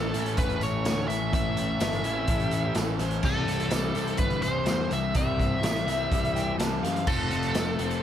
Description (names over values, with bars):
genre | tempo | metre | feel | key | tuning
classic rock | 126 BPM | 4/4 | straight | unclear | A4 = 442 Hz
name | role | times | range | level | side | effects
nasal lead guitar with a parked wah | melody | 0.0-8.0 s | A4 to E5 | -31 LUFS | equal | overdrive
bright tonewheel organ | sustained chords | 0.0-8.0 s | C4 to A4 | -43 LUFS | right 1 dB | none
overdriven semi-hollow guitar | riff | 0.0-8.0 s | A2 to F4 | -32 LUFS | left 10 dB | none
raw garage guitar | riff | 0.0-8.0 s | A2 to C#4 | -35 LUFS | right 14 dB | overdrive
fuzz picked electric bass | bass | 0.0-8.0 s | E1 to F#2 | -32 LUFS | right 1 dB | overdrive
raw garage drum kit | drums | 0.1-8.0 s | crash cymbal, hi-hat, kick drum, snare drum | -29 LUFS | equal | none
tambourine | percussion | 0.1-7.9 s | none | -46 LUFS | right 8 dB | none
overdriven slide guitar | second line | 2.1-7.1 s | C4 to A5 | -35 LUFS | left 4 dB | none
room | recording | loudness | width
studio ambience | none | -24 LUFS | side -10 dB against mid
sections
0.0-8.0 A section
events
none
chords
0.0 A; 3.3 C; 7.1 F